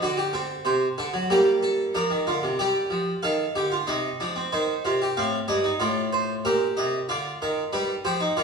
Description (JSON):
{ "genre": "classical, baroque-style 3-part fugue for harpsichord", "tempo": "94 BPM", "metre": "4/4", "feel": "straight", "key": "unclear", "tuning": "A4 = 440 Hz", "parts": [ { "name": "harpsichord", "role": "solo", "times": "0.0-8.4 s", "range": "G2 to F5", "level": "-22 LUFS", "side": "right 1 dB", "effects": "none" } ], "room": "wet recital hall reverb, RT60 1.4 s", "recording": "small room ambience", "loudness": "-22 LUFS", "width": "side -5 dB against mid", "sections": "0.0-2.6 A section; 2.6-8.4 B section", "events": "none", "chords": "0.0 D7; 1.3 Gm; 2.6 G5; 3.9 Cm; 5.2 F7; 6.5 Bb; 7.7 G7" }